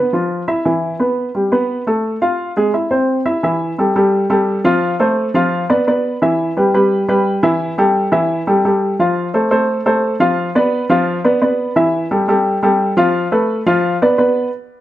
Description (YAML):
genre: jazz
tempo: 173 BPM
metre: 4/4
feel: straight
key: A minor from 3.4 s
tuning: A4 = 441 Hz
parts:
  - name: warm upright piano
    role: solo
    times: 0.0-14.5 s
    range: E3 to F5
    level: -13 LUFS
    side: equal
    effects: none
room: moderate large studio reverb, RT60 1.0 s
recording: none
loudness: -13 LUFS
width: side -14 dB against mid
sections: 0.0-3.4 A section; 3.4-14.5 B section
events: none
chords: 0.0 E5; 0.6 Emadd11; 2.0 Fm; 2.7 C; 3.4 A5; 4.8 F; 5.5 Bdim/F; 6.2 Em; 7.6 A5; 9.0 F; 10.4 Bdim/F; 11.8 Emadd11; 13.1 F; 13.8 Bdim/F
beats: 0.30 | 0.65 0.99 1.34 1.69 | 2.04 2.39 2.74 3.08 | 3.43 3.78 4.13 4.47 | 4.82 5.17 5.52 5.86 | 6.21 6.56 6.91 7.25 | 7.60 7.95 8.29 8.64 | 8.99 9.34 9.68 10.03 | 10.38 10.72 11.07 11.41 | 11.76 12.11 12.45 12.80 | 13.15 13.49 13.84 14.19